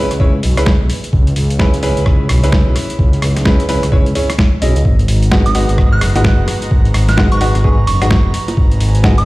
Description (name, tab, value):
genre	UK garage, two-step garage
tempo	129 BPM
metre	4/4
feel	swing 61% on 16ths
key	G# minor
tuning	A4 = 440 Hz
part	bright grand piano	stabs	0.0-9.2 s	G#3 to D#5	-20 LUFS	equal	dub echo
part	dark detuned saw bass	bass	0.0-9.2 s	F#1 to C#2	-14 LUFS	equal	sidechain pumping
part	boom bap sampler-style drum kit	drums	0.1-9.2 s	bongos, hi-hat, rim click, snare drum	-19 LUFS	equal	overdrive, small room ambience
part	electronic kick drum	drums	0.2-9.2 s	none	-12 LUFS	equal	overdrive, small room ambience
part	airy breathy pad	sustained chords	5.1-9.2 s	B4 to A#5	-30 LUFS	right 1 dB	chorus, sidechain pumping
part	soft synth bell	melody	5.5-9.2 s	C#6 to F#6	-21 LUFS	right 3 dB	chorus, dub echo
room	light reverb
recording	played on a big sound system in a bare room, large studio reverb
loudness	-10 LUFS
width	side -20 dB against mid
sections	0.0-9.2 A section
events	none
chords	0.0 C#m7; 4.9 G#m7